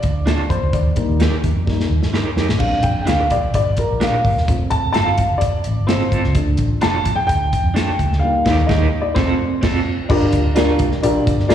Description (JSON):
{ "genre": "uptempo 1960s-style soul", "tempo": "128 BPM", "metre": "4/4", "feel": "straight", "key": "Bb major", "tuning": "A4 = 442 Hz", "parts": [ { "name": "dark upright piano", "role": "accompaniment", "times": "0.0-11.5 s", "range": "F3 to A5", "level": "-20 LUFS", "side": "left 2 dB", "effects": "slapback echo" }, { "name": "vintage muted fingered electric bass", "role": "bass", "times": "0.0-11.5 s", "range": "E1 to G2", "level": "-19 LUFS", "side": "equal", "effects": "none" }, { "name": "warm soul drum kit", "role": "drums", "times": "0.0-11.5 s", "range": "crash cymbal, hi-hat, kick drum, snare drum", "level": "-21 LUFS", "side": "equal", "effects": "none" }, { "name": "electric guitar through a small old amp", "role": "stabs", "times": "0.3-11.5 s", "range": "C4 to Bb4", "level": "-24 LUFS", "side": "right 5 dB", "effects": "tremolo, slapback echo" } ], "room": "light reverb, small room ambience", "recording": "live gig heard through the venue's PA, recital hall reverb", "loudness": "-15 LUFS", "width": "side -10 dB against mid", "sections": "0.0-10.1 A section; 10.1-11.5 B section", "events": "upright piano solo 0.0-10.1; drum fill 1.7-2.6; band accent 8.2-10.1", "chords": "0.0 Dm; 0.7 Eb; 2.6 Bb6; 4.5 F; 6.4 Dm; 8.2 Eb; 9.2 F; 10.1 Gm7" }